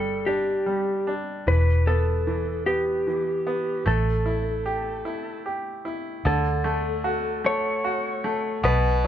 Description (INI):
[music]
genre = six-eight pop ballad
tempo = 50 BPM (dotted quarters)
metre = 6/8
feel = straight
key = D major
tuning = A4 = 440 Hz
[part]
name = clean lap steel guitar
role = melody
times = 0.0-9.1 s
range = G4 to C#5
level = -26 LUFS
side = left 1 dB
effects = none
[part]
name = bright upright piano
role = accompaniment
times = 0.0-9.1 s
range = B2 to G4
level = -27 LUFS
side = equal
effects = none
[part]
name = vintage muted fingered electric bass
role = bass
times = 0.0-9.1 s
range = E1 to D2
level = -24 LUFS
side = equal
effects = none
[sound]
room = light reverb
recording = band playing live in one room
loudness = -22 LUFS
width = side -10 dB against mid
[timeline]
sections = 0.0-6.2 A section; 6.2-9.1 B section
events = break 5.1-6.2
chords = 0.0 G5; 1.5 Em; 3.9 A5; 6.2 Dmaj7